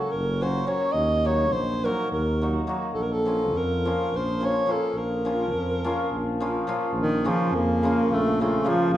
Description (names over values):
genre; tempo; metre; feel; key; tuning
balkan folk, Balkan wedding band; 210 BPM (eighths); 7/8; straight; Bb harmonic minor; A4 = 440 Hz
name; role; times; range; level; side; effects
dark alto saxophone; melody; 0.0-9.0 s; Eb3 to Eb5; -25 LUFS; equal; none
hammered dulcimer; accompaniment; 0.0-9.0 s; Db3 to Gb4; -27 LUFS; left 1 dB; none
mellow tuba; bass; 0.1-9.0 s; Gb1 to F2; -28 LUFS; right 1 dB; none
room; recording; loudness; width
wet recital hall reverb, RT60 1.6 s; recorded in a church or concert hall; -22 LUFS; side -13 dB against mid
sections
0.0-6.9 A section; 6.9-9.0 B section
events
none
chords
0.0 Gb; 0.9 Ebm; 2.9 Bbm